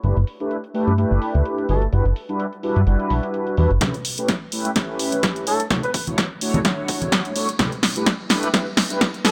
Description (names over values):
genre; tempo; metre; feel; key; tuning
filtered disco house; 127 BPM; 4/4; swing 55% on 16ths; A mixolydian; A4 = 442 Hz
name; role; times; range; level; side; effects
mellow synth brass; accompaniment; 0.0-9.3 s; G3 to C#5; -26 LUFS; equal; chorus, phaser, sidechain pumping, low-pass filter
plucky analog bass; bass; 0.0-9.3 s; G1 to A2; -21 LUFS; equal; sidechain pumping, high-pass filter, low-pass filter
punchy analog drum machine; drums; 0.0-9.3 s; hi-hat, snare drum; -24 LUFS; equal; overdrive, low-pass filter on hats, low-pass filter on snare
dark horn section; melody; 1.7-1.8, 5.5-6.0, 9.2-9.3 s; A3 to B4; -27 LUFS; equal; sidechain pumping, low-pass filter
electronic kick drum; drums; 3.8-9.1 s; none; -28 LUFS; equal; overdrive, high-pass filter on kick
tambourine and congas; percussion; 3.8-9.3 s; none; -32 LUFS; equal; sidechain pumping on perc, low-pass filter on perc
room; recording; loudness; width
light reverb, digital ambience; none; -21 LUFS; mono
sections
0.0-3.8 A section; 3.8-9.3 B section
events
build-up 3.8-9.3; drum fill 3.8-9.3; filter sweep 3.8-9.3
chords
0.0 G6; 1.7 Em7/G; 3.8 A7; 5.5 Dmaj7/A; 7.6 G6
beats
| 0.04 0.51 0.98 1.45 | 1.93 2.40 2.87 3.34 | 3.82 4.29 4.76 5.23 | 5.71 6.18 6.65 7.12 | 7.60 8.07 8.54 9.01